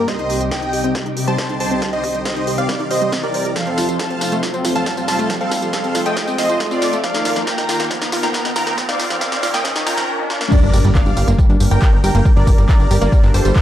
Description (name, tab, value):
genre	uplifting trance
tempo	138 BPM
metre	4/4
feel	straight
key	G minor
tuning	A4 = 437 Hz
part	lush unison pad	sustained chords	0.0-13.6 s	C2 to C5	-25 LUFS	left 1 dB	chorus, vintage 12-bit sampler grit, sidechain pumping
part	riser and impact	sound effects	0.1-12.3 s	none	-26 LUFS	equal	none
part	big supersaw lead	melody	0.1-13.6 s	F4 to Bb5	-23 LUFS	equal	phaser, sidechain pumping, dub echo
part	plucky unison lead	second line	0.1-13.6 s	C5 to Bb5	-26 LUFS	equal	sidechain pumping, dub echo
part	analog pluck	arpeggios	0.1-13.6 s	F3 to C5	-24 LUFS	right 2 dB	chorus, sidechain pumping, dub echo
part	big-room dance drum kit	drums	0.1-13.6 s	crash cymbal, handclaps, hi-hat, snare drum, tambourine	-24 LUFS	equal	high-pass filter on perc, high-pass filter on snare, high-pass filter on hats, high-pass filter on cymbals, high-pass filter on room
part	electronic kick drum	drums	0.1-13.6 s	none	-16 LUFS	equal	high-pass filter on kick, high-pass filter on room
part	plucky analog bass	bass	10.6-13.5 s	G1	-15 LUFS	equal	sidechain pumping
room	light reverb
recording	dark, warm production, high-pass filter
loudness	-14 LUFS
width	side -12 dB against mid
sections	0.0-10.5 A section; 10.5-13.6 B section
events	build-up 0.0-10.5; drum fill 0.0-10.1, 10.3; filter sweep on synth pluck 0.0-10.5; filter sweep 0.0-10.5; riser 0.1-10.5; drop 10.5-13.6; impact 10.5-12.3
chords	0.1 Cm; 3.6 F; 7.0 Ebsus2; 10.5 Gm